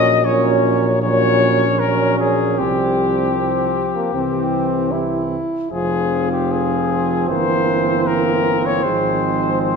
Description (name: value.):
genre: classical, brass quintet.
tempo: 77 BPM.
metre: 4/4.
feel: rubato.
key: unclear.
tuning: A4 = 441 Hz.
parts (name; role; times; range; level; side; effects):
warm trumpet; melody; 0.0-9.8 s; G4 to Eb5; -20 LUFS; left 6 dB; none.
mellow flugelhorn; second line; 0.0-9.8 s; C4 to Db4; -24 LUFS; right 9 dB; none.
clear French horn; accompaniment; 0.0-9.8 s; F3 to E4; -22 LUFS; left 2 dB; none.
clear euphonium; accompaniment; 0.0-9.8 s; Bb2 to F3; -23 LUFS; right 4 dB; none.
mellow tuba; bass; 0.0-9.8 s; F1 to C2; -23 LUFS; right 2 dB; none.
room: wet scoring stage reverb, RT60 1.9 s.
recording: minimal, uncompressed stereo recording.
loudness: -15 LUFS.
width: side -5 dB against mid.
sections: 0.0-9.8 A section.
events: none.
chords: 0.0 Gb/Bb; 2.6 Csus4; 4.1 C; 5.7 Fm; 7.3 C7/G; 8.8 Fm/Ab.